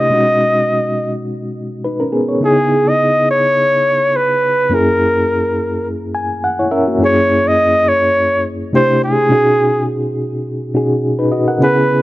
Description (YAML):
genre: soul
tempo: 104 BPM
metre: 4/4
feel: swing 54% on 16ths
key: unclear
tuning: A4 = 440 Hz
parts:
  - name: warm flugelhorn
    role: melody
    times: 0.0-12.0 s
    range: G#4 to D#5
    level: -13 LUFS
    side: equal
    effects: none
  - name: reed electric piano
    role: accompaniment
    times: 0.0-12.0 s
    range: F#2 to G#5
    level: -16 LUFS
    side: equal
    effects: fast tremolo
room: light reverb, studio reverb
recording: none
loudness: -12 LUFS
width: side -16 dB against mid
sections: 0.0-2.4 A section; 2.4-12.0 B section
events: reed electric piano fill 5.9-7.0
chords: 0.1 B69; 2.4 C#m9; 4.7 F#7; 8.7 C69; 9.3 B69